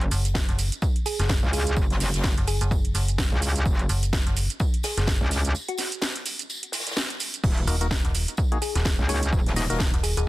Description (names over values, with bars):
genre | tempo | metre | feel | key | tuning
bass house | 127 BPM | 4/4 | swing 58% on 16ths | unclear | A4 = 441 Hz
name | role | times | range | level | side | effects
metallic wobble bass | bass | 0.0-9.9 s | Eb1 to Db2 | -24 LUFS | equal | distortion, chorus, sidechain pumping
house drum kit | drums | 0.0-10.3 s | crash cymbal, hi-hat, shaker, snare drum | -29 LUFS | right 2 dB | none
metallic FM bass | bass | 0.1-10.3 s | Eb1 to Gb1 | -24 LUFS | equal | tube saturation, sidechain pumping
unplugged drum kit | drums | 0.1-10.2 s | hi-hat, snare drum, tambourine | -38 LUFS | left 1 dB | high-pass filter on hats, soft clipping on snare, high-pass filter on snare, high-pass filter on perc, high-pass filter on room
electronic kick drum | drums | 0.3-9.9 s | none | -24 LUFS | equal | none
thumb-piano-like synth pluck | melody | 1.1-10.2 s | Gb4 to Ab4 | -33 LUFS | left 1 dB | chorus, phaser
percussive organ stab | stabs | 7.7-9.8 s | Bb3 to Eb5 | -32 LUFS | left 2 dB | chorus, sidechain pumping, tape echo
room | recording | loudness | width
little or no reverb | dense, heavily limited modern master | -22 LUFS | side -18 dB against mid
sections
0.0-10.3 A section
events
break 5.5-7.4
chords
0.0 Gb5; 7.4 Ebm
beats
0.35 0.82 1.29 | 1.77 2.24 2.71 3.18 | 3.66 4.13 4.60 5.07 | 5.55 6.02 6.49 6.96 | 7.44 7.91 8.38 8.85 | 9.33 9.80 10.27